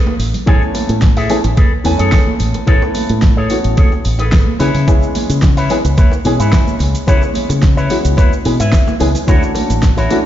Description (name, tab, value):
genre	nu-disco, nu disco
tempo	109 BPM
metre	4/4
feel	straight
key	A major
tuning	A4 = 441 Hz
part	electric guitar with an envelope filter	riff	0.0-10.2 s	E4 to E5	-21 LUFS	left 2 dB	lush chorus, low-pass filter, digital delay
part	congas, bongos and egg shaker	percussion	0.1-10.2 s	none	-25 LUFS	right 5 dB	none
part	fingered electric bass with an envelope filter	bass	0.2-10.1 s	A1 to C#3	-16 LUFS	equal	none
part	pop drum kit	drums	0.2-10.2 s	hi-hat, shaker, snare drum	-22 LUFS	right 1 dB	overdrive
part	dark baby grand piano	accompaniment	0.5-10.2 s	E3 to G#5	-18 LUFS	left 1 dB	sidechain pumping, digital delay
part	electronic kick drum	drums	0.5-9.9 s	none	-12 LUFS	equal	none
room	light reverb, digital ambience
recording	played on a big sound system in a bare room, large studio reverb, nothing above 7.5 kHz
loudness	-11 LUFS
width	side -12 dB against mid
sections	0.0-10.3 A section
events	filter sweep on clean electric guitar 0.0-10.3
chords	0.0 Amaj7; 4.6 C#m7; 9.3 Dmaj9